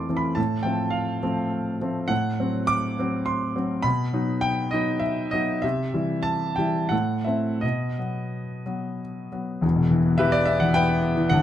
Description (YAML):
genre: classical, romantic character piece for solo piano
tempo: 82-108 BPM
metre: 3/4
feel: rubato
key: E minor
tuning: A4 = 441 Hz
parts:
  - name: clear grand piano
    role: solo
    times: 0.0-11.4 s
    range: E1 to D6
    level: -22 LUFS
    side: equal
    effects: none
room: light reverb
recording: close, detailed microphones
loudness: -22 LUFS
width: side -11 dB against mid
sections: 0.0-9.6 A section; 9.6-11.4 B section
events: none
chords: 0.4 F/A; 2.1 F#dim/A; 3.9 B; 5.6 C; 6.9 Am; 7.6 B; 9.6 Em